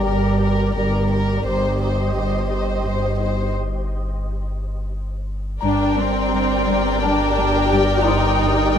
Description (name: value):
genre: cinematic, suspense film score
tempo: 86 BPM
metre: 3/4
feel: straight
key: G minor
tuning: A4 = 440 Hz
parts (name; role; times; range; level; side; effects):
- warm chamber violin section; melody; 0.0-8.8 s; Bb4 to G5; -26 LUFS; left 2 dB; none
- flickering grainy texture; sustained chords; 0.0-8.8 s; G4 to Eb5; -27 LUFS; equal; built-in reverb
- saturated sub bass; drone; 0.0-8.8 s; G1; -26 LUFS; equal; none
- celesta; texture; 0.0-8.8 s; Eb4 to C6; -31 LUFS; left 8 dB; none
- clear chamber double bass section; bass; 0.1-8.8 s; G1; -26 LUFS; right 2 dB; none
- warm chamber cello section; bass; 0.1-8.8 s; G2; -27 LUFS; right 2 dB; none
- rich studio violin section; second line; 5.6-8.8 s; Bb4 to D5; -23 LUFS; left 3 dB; none
- warm studio viola section; accompaniment; 5.6-8.8 s; C4 to G4; -20 LUFS; equal; none
- warm chamber cello section; riff; 5.6-8.6 s; G2 to G3; -26 LUFS; left 1 dB; none
room: moderate recital hall reverb, RT60 1.6 s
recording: close, detailed microphones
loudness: -18 LUFS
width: side -8 dB against mid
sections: 0.0-5.6 A section; 5.6-8.8 A section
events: break 3.5-5.6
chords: 0.0 Gm; 1.4 Cm/G; 5.6 Gm